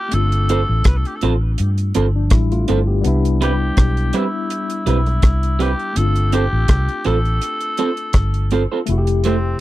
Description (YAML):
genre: lovers rock reggae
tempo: 82 BPM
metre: 4/4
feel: swing 54% on 16ths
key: unclear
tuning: A4 = 440 Hz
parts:
  - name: raspy tenor saxophone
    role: melody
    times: 0.0-9.6 s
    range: C4 to B4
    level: -25 LUFS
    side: equal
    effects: tape echo
  - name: tine electric piano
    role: accompaniment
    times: 0.0-9.6 s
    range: C3 to G4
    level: -24 LUFS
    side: left 4 dB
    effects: medium stereo tremolo, slapback echo
  - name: vintage muted fingered electric bass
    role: bass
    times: 0.1-9.5 s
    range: F1 to G2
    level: -17 LUFS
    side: equal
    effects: none
  - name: deep reggae drum kit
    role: drums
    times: 0.1-9.4 s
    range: hi-hat, kick drum, rim click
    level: -17 LUFS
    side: equal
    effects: none
  - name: electric guitar through a small old amp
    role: stabs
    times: 0.5-9.4 s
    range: G3 to C5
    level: -19 LUFS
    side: right 4 dB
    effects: none
room: little or no reverb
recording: dry, close 1970s-style studio recording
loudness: -15 LUFS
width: side -16 dB against mid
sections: 0.0-9.6 A section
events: none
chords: 0.1 G9sus4; 3.0 Cmaj7; 6.0 G9sus4; 8.9 Fmaj9